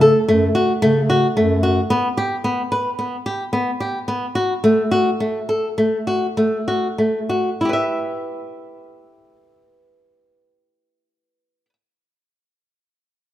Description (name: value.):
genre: contemporary instrumental, chamber music in an uneven meter.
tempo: 96-111 BPM.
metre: 5/4.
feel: straight.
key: E dorian.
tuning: A4 = 440 Hz.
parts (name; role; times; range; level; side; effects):
flamenco guitar; arpeggios; 0.0-11.7 s; A3 to E5; -17 LUFS; equal; none.
mellow bass clarinet; bass; 0.0-1.8 s; F#2 to C#3; -21 LUFS; equal; none.
room: light reverb.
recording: close, detailed microphones.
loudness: -17 LUFS.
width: side -13 dB against mid.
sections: 0.0-7.6 A section; 7.6-10.7 B section.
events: slowing down 3.0-7.6.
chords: 0.0 F#m; 1.9 G/B; 4.6 F#m; 7.6 Em.